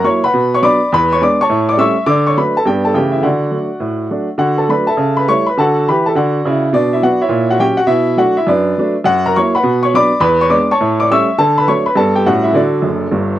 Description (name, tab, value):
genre	jazz, stride piano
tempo	206 BPM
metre	4/4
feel	swing 64% on 8ths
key	D major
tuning	A4 = 439 Hz
part	clear upright piano	solo	0.0-13.4 s	F#1 to E6	-11 LUFS	equal	none
room	light reverb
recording	dry, close 1970s-style studio recording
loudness	-11 LUFS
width	side -13 dB against mid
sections	0.0-4.4 A section; 4.4-13.4 A section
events	upright piano fill 12.8-13.4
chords	0.3 Bm; 0.9 E7; 1.5 A7; 2.1 D; 2.7 G; 3.0 A7/C#; 3.2 D; 5.0 A7/C#; 5.6 D; 6.7 Bm; 7.3 F#7/A#; 7.9 Bm7; 9.1 F#7; 9.6 Bm; 10.2 E7; 10.8 A7; 11.4 D; 12.0 G; 12.3 A7; 12.6 D